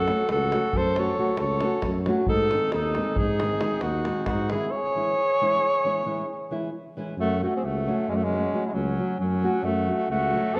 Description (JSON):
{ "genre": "balkan folk, Balkan wedding band", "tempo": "269 BPM (eighths)", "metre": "11/8", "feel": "straight", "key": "unclear", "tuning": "A4 = 440 Hz", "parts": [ { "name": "warm alto saxophone", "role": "melody", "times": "0.0-10.6 s", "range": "F#3 to C#5", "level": "-28 LUFS", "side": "equal", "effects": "none" }, { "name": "mellow trumpet", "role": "second line", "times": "0.0-10.6 s", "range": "C#4 to A4", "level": "-34 LUFS", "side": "equal", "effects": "none" }, { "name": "mellow tuba", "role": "bass", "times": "0.0-10.6 s", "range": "C#2 to G#2", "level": "-32 LUFS", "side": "equal", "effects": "none" }, { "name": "nylon-string guitar", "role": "accompaniment", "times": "0.1-10.5 s", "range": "D#3 to F#4", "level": "-33 LUFS", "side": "equal", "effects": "none" }, { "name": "davul", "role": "percussion", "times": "0.1-4.7 s", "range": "none", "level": "-34 LUFS", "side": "equal", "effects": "none" } ], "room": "wet recital hall reverb, RT60 1.7 s", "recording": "worn, warbling old tape, cassette tape, warbly pitch drift", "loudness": "-25 LUFS", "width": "mono", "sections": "0.0-7.2 A section; 7.2-10.6 A section", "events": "none", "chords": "0.0 F#m; 2.3 G#; 4.7 C#m; 7.2 F#m", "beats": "0.06 0.28 0.51 0.73 0.95 1.17 1.39 1.62 1.84 2.06 | 2.28 2.50 2.73 2.95 3.17 3.39 3.62 3.84 4.06 4.28 4.50 | 4.73 4.95 5.17 5.39 5.62 5.84 6.06 6.29 6.51 6.73 6.96 | 7.18 7.40 7.63 7.85 8.07 8.30 8.52 8.74 8.97 9.19 9.41 | 9.64 9.86 10.08 10.31 10.53" }